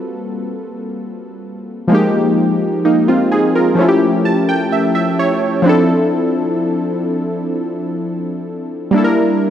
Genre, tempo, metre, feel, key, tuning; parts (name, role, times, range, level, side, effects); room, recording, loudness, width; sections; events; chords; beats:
R&B; 64 BPM; 4/4; straight; D minor from 5.7 s; A4 = 440 Hz
warm analog keys; solo; 0.0-9.5 s; F3 to A5; -14 LUFS; equal; chorus
moderate lush hall reverb, RT60 2.2 s; -13 LUFS; side -10 dB against mid
0.0-5.7 A section; 5.7-9.5 B section
synth keys fill 3.8-5.7
0.0 Gm11; 1.9 Fm11; 3.8 A7b13; 5.7 Dm9; 8.9 Em7b5
0.03 0.97 | 1.90 2.84 3.78 4.72 | 5.65 6.59 7.53 8.47 | 9.40